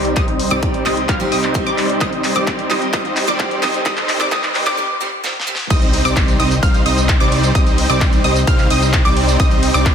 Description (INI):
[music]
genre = EDM, festival progressive house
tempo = 130 BPM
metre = 4/4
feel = straight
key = C minor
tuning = A4 = 440 Hz
[part]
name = picked steel-string acoustic guitar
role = accompaniment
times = 0.0-5.6 s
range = Eb3 to G4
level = -25 LUFS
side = right 1 dB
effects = sidechain pumping, tape echo
[part]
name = lush unison pad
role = sustained chords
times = 0.0-9.9 s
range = C3 to C5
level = -26 LUFS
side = right 1 dB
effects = chorus, phaser, sidechain pumping
[part]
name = wide unison pluck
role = arpeggios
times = 0.0-9.9 s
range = D6 to F6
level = -22 LUFS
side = equal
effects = sidechain pumping, tape echo
[part]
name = supersaw chords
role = riff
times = 0.0-9.9 s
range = G3 to F5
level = -20 LUFS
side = right 1 dB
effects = sidechain pumping, low-pass filter, tape echo
[part]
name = fat analog bass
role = bass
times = 0.0-9.9 s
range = C2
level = -20 LUFS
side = equal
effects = sidechain pumping
[part]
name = big-room dance drum kit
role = drums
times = 0.0-9.9 s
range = crash cymbal, handclaps, hi-hat, ride cymbal, snare drum, tambourine, woodblock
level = -22 LUFS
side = left 1 dB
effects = none
[part]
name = riser and impact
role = sound effects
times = 1.3-7.5 s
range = none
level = -31 LUFS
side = equal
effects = none
[part]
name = electronic kick drum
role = drums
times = 0.2-9.9 s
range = none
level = -17 LUFS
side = equal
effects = none
[sound]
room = light reverb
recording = dense, heavily limited modern master, high-pass filter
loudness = -13 LUFS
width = side -8 dB against mid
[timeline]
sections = 0.0-5.7 A section; 5.7-9.9 B section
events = build-up 0.0-5.7; drum fill 0.0-4.8, 5.2-5.7; filter sweep on supersaw synth 0.0-5.7; filter sweep 0.0-5.7; break 4.8-5.7; drop 5.7-9.9; impact 5.7-7.5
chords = 0.0 Cm